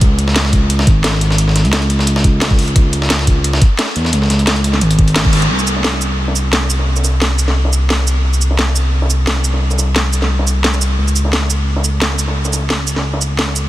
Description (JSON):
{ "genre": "liquid drum and bass", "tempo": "175 BPM", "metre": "4/4", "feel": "straight", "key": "unclear", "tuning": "A4 = 440 Hz", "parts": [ { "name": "smooth gliding synth bass", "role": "bass", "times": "0.0-13.7 s", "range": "Ab1 to Fb2", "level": "-14 LUFS", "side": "equal", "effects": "none" }, { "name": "breakbeat sampler-style drum kit", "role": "drums", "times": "0.0-13.7 s", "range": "hi-hat, snare drum", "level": "-23 LUFS", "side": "equal", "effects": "high-pass filter on snare, low-pass filter on snare, high-pass filter on hats, low-pass filter on hats" }, { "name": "electronic kick drum", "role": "drums", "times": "0.0-5.3 s", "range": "none", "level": "-12 LUFS", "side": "equal", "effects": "none" }, { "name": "garage drum kit", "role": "drums", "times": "0.0-13.6 s", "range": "hi-hat, shaker, snare drum", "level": "-17 LUFS", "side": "equal", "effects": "none" } ], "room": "light reverb, digital ambience", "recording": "dense, heavily limited modern master", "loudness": "-12 LUFS", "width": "side -15 dB against mid", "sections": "0.0-5.5 A section; 5.5-13.7 B section", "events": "band accent 5.2", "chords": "none", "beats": "| 0.02 0.36 0.70 1.04 | 1.39 1.73 2.07 2.42 | 2.76 3.10 3.44 3.79 | 4.13 4.47 4.82 5.16 | 5.50 5.84 6.19 6.53 | 6.87 7.22 7.56 7.90 | 8.24 8.59 8.93 9.27 | 9.62 9.96 10.30 10.64 | 10.99 11.33 11.67 12.02 | 12.36 12.70 13.04 13.39" }